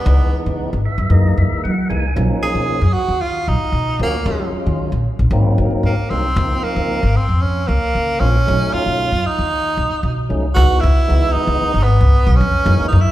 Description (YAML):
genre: electric jazz fusion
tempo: 114 BPM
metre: 4/4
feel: straight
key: unclear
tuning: A4 = 440 Hz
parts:
  - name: bright tenor saxophone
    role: melody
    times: 0.0-13.1 s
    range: A#3 to Ab4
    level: -20 LUFS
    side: right 2 dB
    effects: slapback echo
  - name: tonewheel organ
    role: accompaniment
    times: 0.0-13.0 s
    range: Fb3 to Ab5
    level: -24 LUFS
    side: equal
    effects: slow rotary speaker, slapback echo
  - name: upright bass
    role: bass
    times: 0.0-13.0 s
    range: Ab1 to Gb3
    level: -16 LUFS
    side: equal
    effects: none
room: light reverb, studio reverb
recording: live gig heard through the venue's PA, club reverb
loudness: -14 LUFS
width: side -14 dB against mid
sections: 0.0-10.6 A section; 10.6-13.1 B section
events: tonewheel organ fill 0.6-2.2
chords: 0.1 Dbm9; 1.1 Gb13; 2.2 Bmaj9#11; 4.3 Ebm11; 5.3 Ab9; 6.4 Dbmaj13; 8.5 B9; 10.6 C#m9